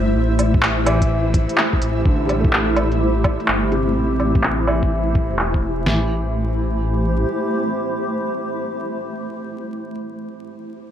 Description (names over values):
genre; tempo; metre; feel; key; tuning
future garage; 126 BPM; 4/4; swing 64% on 16ths; A minor; A4 = 440 Hz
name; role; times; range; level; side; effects
clear upright piano; accompaniment; 0.0-10.9 s; C3 to D4; -26 LUFS; equal; vintage 12-bit sampler grit, sidechain pumping, low-pass filter, tape echo
granular cloud pad; sustained chords; 0.0-10.1 s; A3 to C5; -23 LUFS; equal; built-in reverb, sidechain pumping
dark detuned saw bass; bass; 0.0-7.3 s; E1 to A1; -21 LUFS; equal; sidechain pumping
flickering grainy texture; texture; 0.0-5.9 s; E4 to E5; -29 LUFS; left 1 dB; built-in reverb
organic electronic drum kit; drums; 0.4-5.7 s; handclaps, hi-hat, woodblock; -21 LUFS; equal; overdrive, low-pass filter on hats, low-pass filter on perc, low-pass filter on snare, low-pass filter on room
lo-fi sampler-style drum kit; drums; 0.5-6.0 s; kick drum, snare drum; -18 LUFS; equal; overdrive
room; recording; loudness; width
light reverb; vinyl crackle; -17 LUFS; side -10 dB against mid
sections
0.0-5.9 A section; 5.9-9.7 B section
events
filter sweep on drum 0.0-5.9; filter sweep on detuned saw bass 0.0-5.9; filter sweep on upright piano 0.0-5.9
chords
0.0 Am7